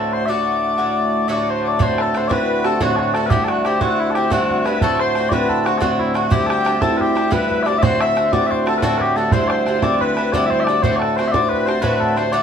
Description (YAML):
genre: celtic folk, Celtic slip jig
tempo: 120 BPM (dotted quarters)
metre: 9/8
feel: straight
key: D mixolydian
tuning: A4 = 441 Hz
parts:
  - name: mellow small bagpipes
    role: melody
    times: 0.0-12.4 s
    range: D2 to E5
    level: -18 LUFS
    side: left 1 dB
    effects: none
  - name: accordion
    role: second line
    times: 0.0-12.4 s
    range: E4 to E5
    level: -26 LUFS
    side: left 3 dB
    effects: none
  - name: Irish bouzouki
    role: accompaniment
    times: 0.0-12.4 s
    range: G2 to F#4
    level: -21 LUFS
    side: right 1 dB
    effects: none
  - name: bodhran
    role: percussion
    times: 1.8-12.2 s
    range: none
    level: -22 LUFS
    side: right 3 dB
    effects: none
room: wet studio ambience, RT60 0.5 s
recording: band playing live in one room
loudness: -15 LUFS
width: side -7 dB against mid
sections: 0.0-1.8 A section; 1.8-12.4 A section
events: none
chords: 0.3 D; 1.8 D7; 3.3 Cadd9; 4.8 D7; 6.3 Cadd9; 7.8 D7; 9.3 Cadd9; 10.8 D7